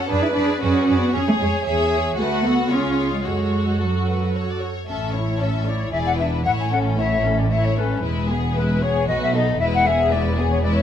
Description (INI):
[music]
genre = quick classical-period movement for symphony orchestra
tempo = 114 BPM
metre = 3/4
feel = rubato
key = F# minor, A major from 4.9 s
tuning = A4 = 439 Hz
[part]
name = rich chamber violin section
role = melody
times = 0.0-10.8 s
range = G#4 to F#5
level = -31 LUFS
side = left 6 dB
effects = none
[part]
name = rich studio violin section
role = second line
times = 0.0-10.8 s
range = C#4 to C#5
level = -27 LUFS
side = left 4 dB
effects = none
[part]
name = rich chamber viola section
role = accompaniment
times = 0.0-10.8 s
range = G#3 to C#5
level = -26 LUFS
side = equal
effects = none
[part]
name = warm chamber cello section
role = bass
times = 0.0-10.8 s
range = E2 to E4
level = -23 LUFS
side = right 2 dB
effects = none
[part]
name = rich chamber double bass section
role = bass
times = 0.1-10.8 s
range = E1 to F#2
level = -24 LUFS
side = right 2 dB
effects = none
[part]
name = silver concert flute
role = second line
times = 5.4-10.8 s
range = B4 to G#5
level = -22 LUFS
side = left 4 dB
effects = none
[sound]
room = moderate scoring stage reverb, RT60 1.6 s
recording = none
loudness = -18 LUFS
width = side -9 dB against mid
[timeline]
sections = 0.0-4.9 A section; 4.9-10.8 B section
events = none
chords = 0.1 G#m7b5/F#; 1.1 C#/E#; 1.6 C#m/E; 2.2 Bm/D; 2.7 C#; 3.2 F#m; 4.9 A; 5.9 E7; 6.5 A; 8.0 E; 9.1 B7; 9.6 E